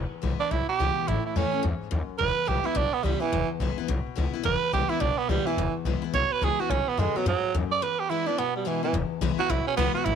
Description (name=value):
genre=rockabilly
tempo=214 BPM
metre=4/4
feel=swing 61% on 8ths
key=E mixolydian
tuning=A4 = 440 Hz
part: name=picked steel-string acoustic guitar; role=accompaniment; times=0.0-10.2 s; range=E2 to F#4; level=-31 LUFS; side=left 13 dB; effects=none
part: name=upright bass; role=bass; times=0.0-10.2 s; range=E1 to F#2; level=-28 LUFS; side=left 1 dB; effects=none
part: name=growling tenor saxophone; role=melody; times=0.4-10.2 s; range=E3 to D5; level=-26 LUFS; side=right 8 dB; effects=none
room=light reverb, small room ambience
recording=1960s-style stereo with parts hard left and right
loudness=-24 LUFS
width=side -7 dB against mid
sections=0.0-8.9 A section; 8.9-10.2 B section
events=tenor saxophone solo 8.9-10.2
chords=0.0 E; 1.1 A; 2.2 E; 6.7 B7; 7.8 E